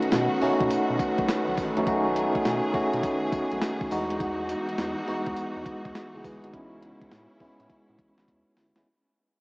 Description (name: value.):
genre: R&B, new jack swing.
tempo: 103 BPM.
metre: 4/4.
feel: swing 65% on 16ths.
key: unclear.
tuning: A4 = 441 Hz.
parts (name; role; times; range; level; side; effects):
tine electric piano; accompaniment; 0.0-8.9 s; G#3 to B4; -27 LUFS; equal; medium stereo tremolo.
bright studio string section; sustained chords; 0.0-8.8 s; C#3 to G#4; -31 LUFS; equal; none.
crisp 8-bit digital drum machine; drums; 0.0-8.9 s; hi-hat, kick drum, snare drum, tambourine; -31 LUFS; equal; overdrive.
round analog bass; bass; 0.1-8.8 s; F#1 to B2; -35 LUFS; equal; none.
room: wet huge ambient reverb, RT60 3.8 s.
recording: dreamy mix soaked in reverb, vinyl crackle, small speaker sound.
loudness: -24 LUFS.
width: side -33 dB against mid.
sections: 0.0-8.9 A section.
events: fade-out 0.0-8.9; drum fill 8.3-8.9.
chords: 0.0 B7; 3.9 Emaj9; 6.5 Amaj7.